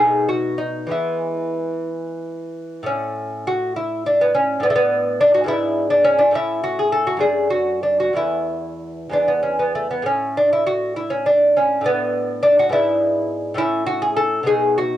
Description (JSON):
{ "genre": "classical, baroque-style dance for lute", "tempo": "60-71 BPM (dotted quarters)", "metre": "6/8", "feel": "rubato", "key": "unclear", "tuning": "A4 = 440 Hz", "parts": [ { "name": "lute", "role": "solo", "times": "0.0-15.0 s", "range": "E2 to A4", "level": "-17 LUFS", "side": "equal", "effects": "none" } ], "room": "light reverb", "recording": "home recording on cassette", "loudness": "-17 LUFS", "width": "side -12 dB against mid", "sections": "0.0-2.9 A section; 2.9-15.0 A section", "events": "none", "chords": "0.0 B7; 0.9 E; 2.9 N.C.; 4.6 Bm7/A; 5.5 E7/G#; 6.4 A; 7.2 D/F#; 8.2 Esus4; 9.1 E; 10.1 N.C.; 11.9 Bm7/A; 12.7 E7/G#; 13.6 A; 14.5 B7" }